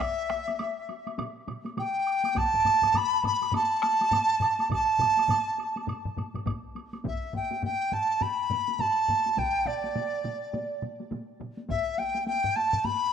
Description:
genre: japanese traditional, taiko drum ensemble.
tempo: 103 BPM.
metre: 4/4.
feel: swing 60% on 16ths.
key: A suspended pentatonic.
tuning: A4 = 440 Hz.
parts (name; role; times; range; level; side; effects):
mellow dizi; melody; 0.0-13.1 s; D5 to B5; -25 LUFS; right 1 dB; none.
taiko ensemble; percussion; 0.0-13.0 s; none; -39 LUFS; left 1 dB; none.
taiko ensemble; percussion; 0.0-11.6 s; none; -38 LUFS; right 3 dB; none.
taiko ensemble; percussion; 0.0-11.9 s; none; -38 LUFS; equal; none.
woodblock; percussion; 0.0-7.0 s; none; -42 LUFS; right 4 dB; none.
taiko ensemble; percussion; 2.4-13.0 s; none; -34 LUFS; left 2 dB; none.
room: wet plate reverb, RT60 2.7 s.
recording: rough home demo mix.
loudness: -25 LUFS.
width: side -8 dB against mid.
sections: 0.0-7.1 A section; 7.1-13.1 B section.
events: none.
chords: none.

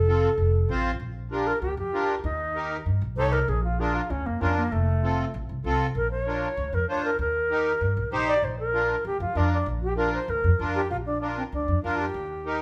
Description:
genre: latin.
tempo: 194 BPM.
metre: 4/4.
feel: straight.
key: Bb major.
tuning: A4 = 440 Hz.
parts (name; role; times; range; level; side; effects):
bright reedy alto flute; melody; 0.0-12.6 s; A3 to D5; -29 LUFS; equal; none.
upright bass; bass; 0.0-12.6 s; F1 to G2; -30 LUFS; equal; none.
accordion; accompaniment; 0.1-12.6 s; C4 to C5; -32 LUFS; equal; light tremolo tuning.
room: moderate large studio reverb, RT60 1.0 s.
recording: band playing live in one room.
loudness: -26 LUFS.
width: mono.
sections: 0.0-1.0 A section; 1.0-10.9 B section; 10.9-12.6 C section.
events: alto flute solo 1.0-10.9.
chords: 0.0 F; 1.0 Bb; 2.2 Eb; 3.5 Bb; 4.7 F; 6.0 Bb; 7.2 Eb; 8.4 Bb.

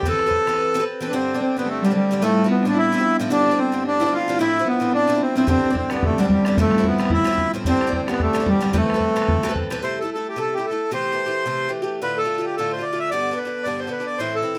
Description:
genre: celtic folk, Celtic reel.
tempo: 220 BPM.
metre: 4/4.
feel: swing 56% on 8ths.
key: unclear.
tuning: A4 = 440 Hz.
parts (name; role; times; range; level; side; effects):
accordion; melody; 0.0-14.6 s; G3 to E5; -24 LUFS; equal; none.
concert harp; second line; 0.0-12.1 s; G3 to E5; -25 LUFS; equal; none.
Irish bouzouki; accompaniment; 0.0-14.6 s; G2 to B4; -28 LUFS; equal; none.
bodhran; percussion; 0.0-0.6, 5.5-9.8 s; none; -27 LUFS; equal; none.
room: moderate small room reverb, RT60 0.5 s.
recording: close, detailed microphones.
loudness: -21 LUFS.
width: mono.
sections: 0.0-1.1 A section; 1.1-9.8 A section; 9.8-14.6 B section.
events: break 0.6-1.1.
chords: 0.0 Amadd9; 1.1 Gsus4; 2.2 Fmaj7; 3.3 Gsus4; 4.4 Fmaj7; 5.5 Gsus4; 6.6 Fmaj7; 7.7 Gsus4; 8.7 Amadd9; 9.8 Am; 10.9 C6; 12.0 Dm; 13.1 G.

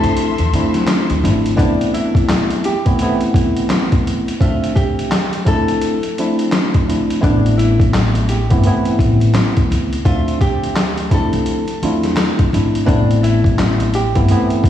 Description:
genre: hip hop, boom-bap hip-hop.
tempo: 85 BPM.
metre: 4/4.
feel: swing 60% on 16ths.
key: A minor.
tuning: A4 = 443 Hz.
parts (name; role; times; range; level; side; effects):
nylon-string guitar; melody; 0.0-14.7 s; D4 to A4; -22 LUFS; left 3 dB; high-pass filter, low-pass filter, analog delay.
tine electric piano; accompaniment; 0.0-14.7 s; E3 to E5; -18 LUFS; right 1 dB; medium stereo tremolo, cassette tape, high-pass filter, low-pass filter.
clear studio string section; sustained chords; 0.0-1.6 s; F3 to C6; -26 LUFS; left 6 dB; high-pass filter, low-pass filter.
upright bass; bass; 0.0-1.5, 7.2-14.7 s; G1 to D3; -17 LUFS; left 1 dB; none.
boom bap sampler-style drum kit; drums; 0.0-14.7 s; handclaps, hi-hat, kick drum, snare drum; -18 LUFS; equal; vintage 12-bit sampler grit.
room: light reverb, studio ambience.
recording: played on a big sound system in a bare room, stone room reverb, vinyl crackle, studio reverb.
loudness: -13 LUFS.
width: side -11 dB against mid.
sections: 0.0-1.6 A section; 1.6-14.7 B section.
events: kick muted 0.2-1.6.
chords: 0.0 Dm9; 1.6 Amadd9; 4.4 Dm9; 7.2 Amadd9; 10.1 Dm9; 12.9 Amadd9.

